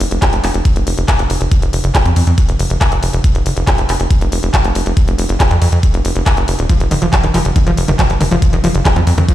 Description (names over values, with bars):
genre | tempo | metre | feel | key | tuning
psychedelic trance | 139 BPM | 4/4 | straight | unclear | A4 = 439 Hz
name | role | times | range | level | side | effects
tight sequencer bass | bass | 0.0-9.3 s | Eb1 to F2 | -14 LUFS | equal | tube saturation
drum and bass drum kit | drums | 0.0-9.3 s | handclaps, hi-hat | -19 LUFS | left 1 dB | none
electronic kick drum | drums | 0.2-9.3 s | none | -12 LUFS | equal | none
overdriven acid bass | riff | 6.7-9.3 s | Eb3 to F3 | -17 LUFS | equal | distortion, auto-pan, cassette tape, sidechain pumping, digital delay
room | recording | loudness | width
little or no reverb | played on a big sound system in a bare room, stone room reverb | -11 LUFS | side -13 dB against mid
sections
0.0-9.3 A section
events
none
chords
none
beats
0.22 0.65 1.08 | 1.51 1.95 2.38 2.81 | 3.24 3.67 4.11 4.54 | 4.97 5.40 5.83 6.26 | 6.70 7.13 7.56 7.99 | 8.42 8.85 9.29